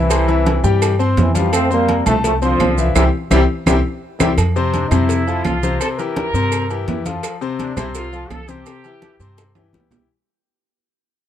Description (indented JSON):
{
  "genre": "latin, salsa",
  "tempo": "168 BPM",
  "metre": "4/4",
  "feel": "straight",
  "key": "F major",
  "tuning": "A4 = 440 Hz",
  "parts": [
    { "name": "mellow trombone section", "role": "melody", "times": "0.0-4.3 s", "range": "C3 to C4", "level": "-19 LUFS", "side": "right 1 dB", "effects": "none" },
    { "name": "bright grand piano", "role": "accompaniment", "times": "0.0-10.1 s", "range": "C3 to C6", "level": "-20 LUFS", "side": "left 6 dB", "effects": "none" },
    { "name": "upright bass", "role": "bass", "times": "0.0-10.0 s", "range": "C2 to G2", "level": "-19 LUFS", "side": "right 1 dB", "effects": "none" },
    { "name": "agogo bells and timbales", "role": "percussion", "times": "0.1-10.0 s", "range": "none", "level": "-28 LUFS", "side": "right 10 dB", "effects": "none" },
    { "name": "claves", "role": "percussion", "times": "0.1-9.6 s", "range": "none", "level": "-30 LUFS", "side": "right 10 dB", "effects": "none" },
    { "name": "congas", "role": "percussion", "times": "0.1-10.0 s", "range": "none", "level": "-23 LUFS", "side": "equal", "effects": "none" },
    { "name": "cowbell and bongos", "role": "percussion", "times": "0.1-10.1 s", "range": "none", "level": "-29 LUFS", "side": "left 3 dB", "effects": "none" },
    { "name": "maracas", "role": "percussion", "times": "0.1-10.1 s", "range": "none", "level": "-30 LUFS", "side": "right 20 dB", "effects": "none" },
    { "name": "brilliant trombone section", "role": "melody", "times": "4.7-9.7 s", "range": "D4 to Bb4", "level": "-26 LUFS", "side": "right 2 dB", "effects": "none" }
  ],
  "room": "small room ambience",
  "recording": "dry, close 1970s-style studio recording",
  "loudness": "-14 LUFS",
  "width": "side -10 dB against mid",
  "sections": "0.0-4.4 A section; 4.4-10.1 B section",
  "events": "band accent 3.0-4.4; drum fill 3.3-4.4, 9.4-10.1; fade-out 4.4-10.1",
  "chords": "0.1 C; 1.5 F; 3.0 C; 4.4 F; 5.8 C7; 7.2 F; 8.7 C",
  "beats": "| 0.10 0.46 0.82 1.17 | 1.53 1.89 2.24 2.60 | 2.95 3.31 3.67 4.02 | 4.38 4.74 5.09 5.45 | 5.80 6.16 6.52 6.88 | 7.23 7.59 7.95 8.30 | 8.66 9.02 9.38 9.73"
}